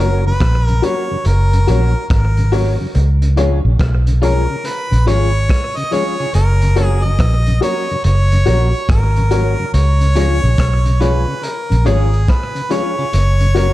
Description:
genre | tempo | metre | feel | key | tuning
roots reggae | 71 BPM | 4/4 | swing 64% on 16ths | Db mixolydian | A4 = 440 Hz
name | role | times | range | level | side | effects
clear harmonica | melody | 0.0-13.7 s | Ab4 to Eb5 | -22 LUFS | equal | tape echo
electric guitar at the edge of break-up | accompaniment | 0.0-13.7 s | F4 to Db5 | -27 LUFS | right 2 dB | tape echo
mellow tonewheel organ | accompaniment | 0.0-13.7 s | Gb2 to Db4 | -24 LUFS | left 2 dB | slow rotary speaker, slapback echo
dark upright piano | stabs | 0.0-13.7 s | F4 to Db5 | -22 LUFS | left 6 dB | none
vintage muted fingered electric bass | bass | 0.0-13.7 s | Gb1 to Db2 | -13 LUFS | equal | none
crunchy breakbeat drum kit | drums | 0.4-13.7 s | hi-hat, kick drum, rim click | -20 LUFS | equal | none
room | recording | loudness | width
studio ambience | dark, warm production | -12 LUFS | side -16 dB against mid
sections
0.0-13.7 A section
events
none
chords
0.0 Gb; 2.9 Db; 6.3 Gb; 9.7 Db; 13.1 Gb

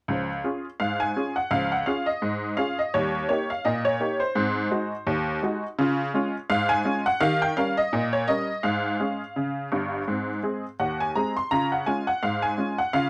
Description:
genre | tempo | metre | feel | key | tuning
ragtime piano | 84 BPM | 2/4 | swing 56% on 16ths | Db major | A4 = 440 Hz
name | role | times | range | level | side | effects
honky-tonk upright piano | solo | 0.1-13.1 s | G1 to C6 | -26 LUFS | equal | none
room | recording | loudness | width
little or no reverb | none | -26 LUFS | mono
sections
0.1-13.1 A section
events
none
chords
0.1 Db; 2.9 Eb; 4.4 Ab7; 5.8 Db; 7.2 Eb7; 8.6 Db/Ab; 10.1 Ab; 11.5 Db

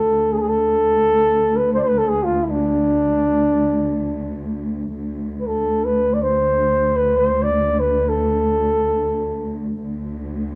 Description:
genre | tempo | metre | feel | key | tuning
Arabic maqam ensemble | free time | none | none | unclear | A4 = 440 Hz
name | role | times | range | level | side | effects
warm trombone | melody | 0.0-9.7 s | D4 to D5 | -20 LUFS | equal | tape echo
dark symphonic cello section | drone | 0.0-10.6 s | D2 | -26 LUFS | equal | none
room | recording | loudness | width
little or no reverb | dry, close 1970s-style studio recording | -19 LUFS | mono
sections
0.0-5.0 A section; 5.0-10.6 A section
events
none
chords
none

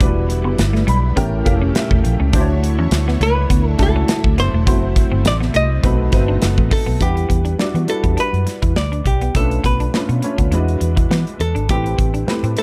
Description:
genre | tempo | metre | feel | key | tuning
polished 1980s jazz-funk pop | 103 BPM | 4/4 | swing 54% on 16ths | E minor | A4 = 440 Hz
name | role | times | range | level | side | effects
archtop guitar, miked and amplified | melody | 0.0-12.6 s | G4 to D#5 | -25 LUFS | equal | none
warm grand piano | accompaniment | 0.0-12.6 s | G3 to B5 | -25 LUFS | equal | ensemble chorus
string machine, violins | sustained chords | 0.0-7.0 s | Bb2 to C#5 | -32 LUFS | equal | ensemble chorus
semi-hollow electric guitar | riff | 0.0-12.6 s | G3 to E4 | -28 LUFS | equal | analog chorus
vintage muted fingered electric bass | bass | 0.0-12.5 s | E1 to E3 | -20 LUFS | equal | none
modern studio drum kit | drums | 0.0-12.6 s | hi-hat, kick drum, snare drum | -21 LUFS | equal | none
room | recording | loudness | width
small room ambience | dark, warm production | -17 LUFS | mono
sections
0.0-7.0 A section; 7.0-12.6 B section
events
grand piano fill 0.6-2.3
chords
0.0 Em7; 1.2 A7b9; 2.3 Dmaj9; 4.7 F#m7b5; 5.8 B7b9; 7.0 Em7; 9.3 Bm7b5; 10.5 E7; 11.7 Am7

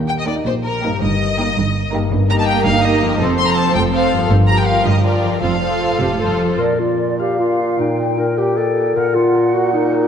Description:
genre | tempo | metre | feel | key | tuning
classical | 98-112 BPM (dotted quarters) | 6/8 | rubato | Bb major | A4 = 441 Hz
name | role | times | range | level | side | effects
concert harp | arpeggios | 0.0-10.1 s | F2 to G5 | -23 LUFS | left 5 dB | none
rich symphonic double bass section | bass | 0.0-6.5 s | F1 to Eb2 | -22 LUFS | right 2 dB | none
warm symphonic cello section | bass | 0.0-6.6 s | Eb2 to C3 | -22 LUFS | right 2 dB | none
warm symphonic violin section | melody | 0.1-6.4 s | Bb4 to C6 | -20 LUFS | left 2 dB | none
warm symphonic violin section | second line | 0.3-6.6 s | G4 to C5 | -24 LUFS | left 1 dB | none
warm symphonic viola section | accompaniment | 0.3-6.6 s | F3 to F4 | -21 LUFS | right 4 dB | none
mellow clarinet | second line | 5.8-10.1 s | Eb4 to Bb4 | -18 LUFS | left 2 dB | none
large flute ensemble | second line | 6.6-9.9 s | D5 to G5 | -23 LUFS | right 1 dB | none
mellow bassoon | accompaniment | 6.6-10.1 s | Bb2 | -19 LUFS | right 1 dB | none
room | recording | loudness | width
wet concert hall reverb, RT60 2.4 s | nothing above 10.9 kHz | -14 LUFS | side -8 dB against mid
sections
0.0-6.6 A section; 6.6-10.1 B section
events
none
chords
0.0 Eb; 1.0 Eb/G; 3.2 F; 4.3 Gm7; 5.4 F; 6.6 Bb; 7.8 Eb/Bb; 9.0 Ebm/Bb

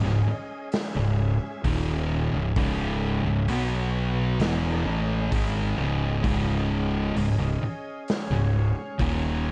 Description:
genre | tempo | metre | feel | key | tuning
stoner and doom metal | 65 BPM | 4/4 | straight | C# minor | A4 = 440 Hz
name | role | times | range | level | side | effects
bright tonewheel organ | sustained chords | 0.0-9.5 s | B3 to E5 | -39 LUFS | equal | slow rotary speaker, overdrive, plate reverb
thick fuzz guitar | riff | 0.0-9.5 s | C#2 to B3 | -30 LUFS | equal | distortion
thick fuzz guitar | riff | 0.0-9.5 s | C#2 to B3 | -30 LUFS | equal | distortion
fuzz fingered electric bass | bass | 0.0-9.5 s | C#1 to B1 | -31 LUFS | equal | overdrive
raw garage drum kit | drums | 0.1-9.2 s | hi-hat, kick drum, snare drum | -33 LUFS | equal | vintage 12-bit sampler grit
room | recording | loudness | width
moderate studio reverb, RT60 0.6 s | none | -26 LUFS | mono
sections
0.0-9.5 A section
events
none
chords
0.0 C#m; 3.5 B5; 4.4 C#m

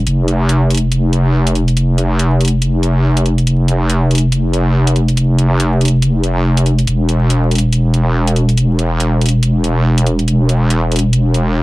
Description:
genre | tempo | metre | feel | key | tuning
deep dubstep | 141 BPM | 4/4 | swing 59% on 16ths, half-time | unclear | A4 = 440 Hz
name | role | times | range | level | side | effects
wobble bass | bass | 0.0-11.6 s | E1 to F1 | -11 LUFS | equal | chorus
electronic hi-hat | drums | 0.1-11.4 s | none | -22 LUFS | right 1 dB | none
room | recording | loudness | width
little or no reverb | vinyl crackle | -11 LUFS | side -19 dB against mid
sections
0.0-11.6 A section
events
none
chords
none

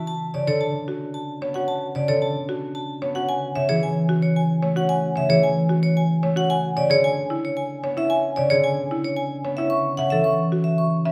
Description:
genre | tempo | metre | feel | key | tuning
classical, minimalist pattern music | 112 BPM | 3/4 | straight | B dorian | A4 = 440 Hz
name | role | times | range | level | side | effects
vibraphone with hard mallets | melody | 0.0-11.0 s | C#5 to C#6 | -26 LUFS | equal | none
concert harp | accompaniment | 0.0-11.1 s | C#3 to C#4 | -25 LUFS | equal | none
buzzing marimba with hard mallets | arpeggios | 0.3-11.1 s | E4 to E5 | -31 LUFS | equal | none
room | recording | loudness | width
wet recital hall reverb, RT60 1.3 s | recorded in a church or concert hall | -22 LUFS | mono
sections
0.1-11.1 A section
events
none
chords
0.1 Bm7; 3.3 Amaj7/C#; 6.5 E7; 9.7 F#m

